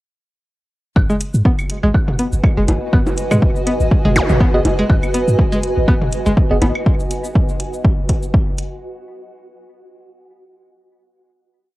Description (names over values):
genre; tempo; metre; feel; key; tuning
minimal techno; 122 BPM; 4/4; swing 55% on 16ths; G# minor; A4 = 440 Hz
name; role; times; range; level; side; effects
punchy sub bass; bass; 1.0-6.7 s; F#1 to G#2; -18 LUFS; equal; sidechain pumping
electronic kick drum; drums; 1.0-8.4 s; none; -16 LUFS; equal; overdrive, cassette tape
electronic woodblock, toms and bongos; percussion; 1.0-6.8 s; none; -22 LUFS; equal; cassette tape, tape echo
granular cloud pad; texture; 2.4-6.9 s; F#4 to G#5; -24 LUFS; right 1 dB; built-in reverb, sidechain pumping
swarming drone; texture; 1.7-8.8 s; F#4; -30 LUFS; right 1 dB; built-in reverb, sidechain pumping
string-like resonator pluck; riff; 1.1-6.7 s; G#3 to B3; -21 LUFS; equal; chorus, sidechain pumping, analog delay
electronic cabasa and hi-hat; drums; 1.1-8.7 s; none; -30 LUFS; equal; overdrive, cassette tape
zap; sound effects; 4.2-4.3 s; none; -21 LUFS; equal; none
wavetable chord stab; stabs; 4.5-6.6 s; B3 to D#5; -21 LUFS; right 1 dB; tape echo
room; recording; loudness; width
digital ambience; home recording on cassette, lossy compression artefacts; -14 LUFS; side -17 dB against mid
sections
1.0-8.8 groove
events
fade-in on ambient pad 1.0-6.9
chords
1.0 G#m7